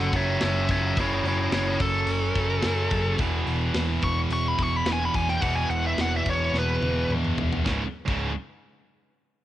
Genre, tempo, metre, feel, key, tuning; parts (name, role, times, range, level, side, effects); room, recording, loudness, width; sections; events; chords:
heavy metal; 108 BPM; 4/4; straight; A4 = 440 Hz
high-gain lead guitar; melody; 0.0-7.1 s; E4 to C#6; -27 LUFS; left 1 dB; distortion, cassette tape
high-gain distorted guitar; riff; 0.0-8.3 s; C#2 to F#3; -29 LUFS; right 6 dB; distortion
scooped high-gain guitar; riff; 0.0-8.3 s; C#2 to F#3; -32 LUFS; left 9 dB; distortion
overdriven picked electric bass; bass; 0.0-8.3 s; C#1 to F#2; -28 LUFS; left 1 dB
tight metal drum kit; drums; 0.1-8.2 s; crash cymbal, hi-hat, kick drum, snare drum, toms; -30 LUFS; left 1 dB; cassette tape
little or no reverb; home recording on cassette; -22 LUFS; side -13 dB against mid
0.0-7.7 A section; 7.7-9.4 B section
lead electric guitar solo 0.0-7.7; drum fill 6.5-7.7
0.0 F#m; 3.2 E5; 7.7 C#5